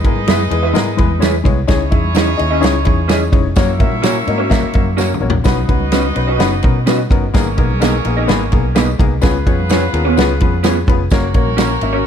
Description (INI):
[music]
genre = uptempo 1960s-style soul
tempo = 127 BPM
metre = 4/4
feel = straight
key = unclear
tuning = A4 = 440 Hz
[part]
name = clear horn section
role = second line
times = 0.0-12.1 s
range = A#3 to E5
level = -23 LUFS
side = right 1 dB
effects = none
[part]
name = warm upright piano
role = accompaniment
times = 0.0-12.0 s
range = G#3 to E5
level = -19 LUFS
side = left 6 dB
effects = none
[part]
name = natural country drum kit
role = drums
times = 0.0-11.9 s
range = kick drum, ride cymbal, snare drum, toms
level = -16 LUFS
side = right 1 dB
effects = none
[part]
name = vintage muted fingered electric bass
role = bass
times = 0.1-12.0 s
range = E#1 to B2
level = -18 LUFS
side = equal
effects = none
[part]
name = congas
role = percussion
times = 0.2-11.8 s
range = none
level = -30 LUFS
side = right 2 dB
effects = none
[part]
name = electric guitar through a small old amp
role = stabs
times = 0.3-12.0 s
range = B3 to E5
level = -20 LUFS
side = right 4 dB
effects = analog chorus
[part]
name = tambourine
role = percussion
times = 0.3-11.7 s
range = none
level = -34 LUFS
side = right 8 dB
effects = none
[sound]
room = light reverb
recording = dark, warm production, faint mains hum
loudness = -12 LUFS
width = side -8 dB against mid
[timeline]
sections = 0.0-12.1 A section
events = drum fill 5.0-5.5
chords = 0.0 E; 1.7 C#madd9; 3.6 F#; 5.5 Badd9; 7.3 G#madd9; 9.2 C#7; 11.1 F#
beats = 0.28 0.75 1.22 | 1.69 2.16 2.63 3.10 | 3.57 4.04 4.51 4.99 | 5.46 5.93 6.40 6.87 | 7.34 7.81 8.28 8.76 | 9.23 9.70 10.17 10.64 | 11.11 11.59 12.06